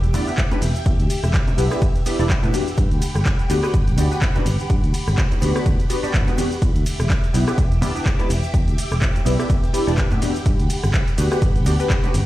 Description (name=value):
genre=filtered disco house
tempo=125 BPM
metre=4/4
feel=swing 56% on 16ths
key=E minor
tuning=A4 = 442 Hz
part: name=phased string machine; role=sustained chords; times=0.0-12.3 s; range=G4 to E6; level=-31 LUFS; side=equal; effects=ensemble chorus, phaser, sidechain pumping
part: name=fingered electric bass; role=bass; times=0.0-12.2 s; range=E1 to A2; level=-21 LUFS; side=equal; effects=sidechain pumping
part: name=punchy analog drum machine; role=drums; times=0.0-12.2 s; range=cabasa, handclaps, hi-hat, ride cymbal, rim click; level=-29 LUFS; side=equal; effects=none
part: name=egg shaker and congas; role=percussion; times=0.0-12.2 s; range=none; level=-29 LUFS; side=left 1 dB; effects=sidechain pumping on perc
part: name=funky polysynth comp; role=accompaniment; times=0.1-12.1 s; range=B3 to D5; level=-24 LUFS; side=equal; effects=chorus, phaser, sidechain pumping
part: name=electronic kick drum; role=drums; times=0.4-12.0 s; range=none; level=-20 LUFS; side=equal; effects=none
room=little or no reverb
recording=played on a big sound system in a bare room, stone room reverb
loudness=-17 LUFS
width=side -16 dB against mid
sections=0.0-12.3 A section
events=none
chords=0.0 Em7; 2.5 Gmaj7; 6.6 Em7; 10.2 Gmaj7